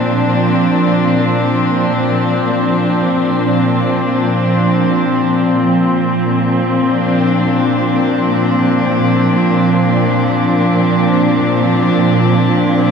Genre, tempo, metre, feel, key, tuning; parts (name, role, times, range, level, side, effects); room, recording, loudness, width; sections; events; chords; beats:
ambient; free time; Bb major; A4 = 440 Hz
warm chamber string section; solo; 0.0-12.9 s; Bb2 to D4; -11 LUFS; equal; tape echo
wet cathedral reverb, RT60 5.2 s; in a vast, echoing space; -11 LUFS; side -6 dB against mid
0.0-5.5 A section; 5.5-12.9 B section
0.0 Bbadd9
free time